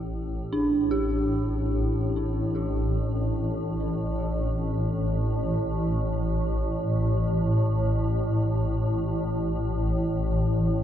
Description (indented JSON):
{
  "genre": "dark ambient drone",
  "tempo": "free time",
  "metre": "none",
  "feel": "none",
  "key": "unclear",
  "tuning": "A4 = 440 Hz",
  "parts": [
    { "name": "dark detuned synth bell", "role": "arpeggios", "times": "0.0-10.8 s", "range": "D4 to G4", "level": "-30 LUFS", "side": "right 1 dB", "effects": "chorus, phaser, tape echo" },
    { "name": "swarming drone", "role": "drone", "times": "0.0-10.8 s", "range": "A1 to A2", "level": "-24 LUFS", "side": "equal", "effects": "built-in reverb" }
  ],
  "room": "wet cathedral reverb, RT60 6.9 s",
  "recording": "none",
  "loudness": "-24 LUFS",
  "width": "side -10 dB against mid",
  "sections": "0.0-10.8 A section",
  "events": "none",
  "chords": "0.0 A7sus4"
}